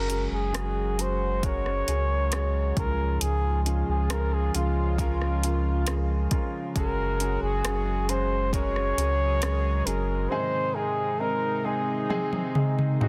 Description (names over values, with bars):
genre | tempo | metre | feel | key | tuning
pop ballad | 68 BPM | 4/4 | straight | Db major | A4 = 440 Hz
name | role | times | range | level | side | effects
warm flugelhorn | melody | 0.0-13.0 s | F4 to Db5 | -32 LUFS | equal | none
warm grand piano | accompaniment | 0.0-13.1 s | Ab2 to Bb4 | -36 LUFS | equal | none
chorused pulse-width pad | sustained chords | 0.0-13.1 s | C3 to Ab4 | -37 LUFS | equal | none
warm sub bass | bass | 0.0-10.3 s | Gb1 to Db2 | -29 LUFS | equal | none
smooth R&B drum kit | drums | 0.1-13.1 s | hi-hat, kick drum, rim click, toms | -31 LUFS | equal | overdrive
room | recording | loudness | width
light reverb, digital ambience | dense, heavily limited modern master | -26 LUFS | mono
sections
0.0-13.1 A section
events
drum fill 12.1-13.1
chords
0.0 Gbsus2; 2.8 Db; 6.8 Gbsus2; 10.3 Ab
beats
0.55 1.44 2.33 | 3.21 4.10 4.99 5.87 | 6.76 7.64 8.53 9.42 | 10.31 11.21 12.10 13.01